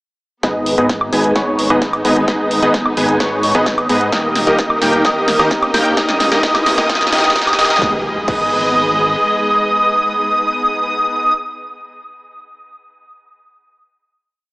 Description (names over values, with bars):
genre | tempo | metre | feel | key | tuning
EDM, festival progressive house | 130 BPM | 4/4 | straight | G# harmonic minor | A4 = 442 Hz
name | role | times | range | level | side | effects
rich symphonic string section | sustained chords | 0.4-10.9 s | D#3 to D#5 | -22 LUFS | equal | sidechain pumping
wide unison lead | arpeggios | 0.4-11.3 s | C#6 to G#6 | -18 LUFS | equal | ensemble chorus, sidechain pumping, dub echo
supersaw stab | riff | 0.4-11.3 s | A#3 to G#5 | -16 LUFS | equal | sidechain pumping, low-pass filter, dub echo
fat analog bass | bass | 0.4-9.2 s | D#1 to G#2 | -24 LUFS | equal | sidechain pumping
big-room dance drum kit | drums | 0.4-8.4 s | crash cymbal, hi-hat, snare drum, woodblock | -20 LUFS | equal | none
electronic kick drum | drums | 0.4-8.4 s | none | -22 LUFS | equal | high-pass filter on kick
riser and impact | sound effects | 4.7-10.9 s | none | -28 LUFS | equal | none
room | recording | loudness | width
wet lush hall reverb, RT60 2.0 s, digital ambience | high-pass filter, small speaker sound | -12 LUFS | side -22 dB against mid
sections
0.4-7.8 build; 7.8-11.5 final chord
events
build-up 0.4-7.8; drum fill 0.4-7.8; filter sweep on supersaw synth 0.4-7.8; filter sweep on analog synth lead 0.4-7.8; filter sweep 0.4-7.8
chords
0.4 G#m; 4.1 D#; 6.0 C#m/E; 7.8 G#m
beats
| 0.43 0.90 1.36 1.82 | 2.28 2.74 3.20 3.66 | 4.12 4.59 5.05 5.51 | 5.97 6.43 6.89 7.36 | 7.82 8.28 8.74 9.20 | 9.66 10.12 10.59 11.05